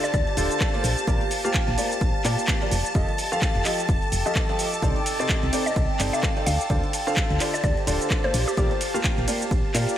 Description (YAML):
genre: piano house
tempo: 128 BPM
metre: 4/4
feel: swing 58% on 16ths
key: unclear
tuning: A4 = 440 Hz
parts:
  - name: mallet-like synth pluck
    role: melody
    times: 0.0-0.2, 5.7-8.7 s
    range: G4 to F5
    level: -30 LUFS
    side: left 1 dB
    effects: chorus, analog delay
  - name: string machine, violins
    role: sustained chords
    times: 0.0-10.0 s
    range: A5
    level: -31 LUFS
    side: equal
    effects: ensemble chorus, sidechain pumping
  - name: warm concert grand piano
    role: riff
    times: 0.0-10.0 s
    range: C3 to F5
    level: -28 LUFS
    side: equal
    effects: analog chorus, sidechain pumping, analog delay
  - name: punchy analog drum machine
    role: drums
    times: 0.0-10.0 s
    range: cabasa, handclaps, hi-hat, ride cymbal, rim click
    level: -29 LUFS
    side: right 1 dB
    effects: none
  - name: warbly tape-like pad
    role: texture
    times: 0.0-10.0 s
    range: G4 to D6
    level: -32 LUFS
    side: right 1 dB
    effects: chorus, built-in reverb, phaser, sidechain pumping
  - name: solid FM bass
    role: bass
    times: 0.1-9.9 s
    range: D1 to Bb2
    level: -26 LUFS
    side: equal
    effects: sidechain pumping
  - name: electronic kick drum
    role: drums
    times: 0.1-9.6 s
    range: none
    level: -25 LUFS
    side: equal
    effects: none
room: moderate lush hall reverb, RT60 1.9 s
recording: dreamy mix soaked in reverb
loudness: -21 LUFS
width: side -11 dB against mid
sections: 0.0-10.0 A section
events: none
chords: 0.0 Dm7; 0.8 Bb6; 2.7 F9; 4.8 Cm69; 6.5 Dm7; 8.3 Bb6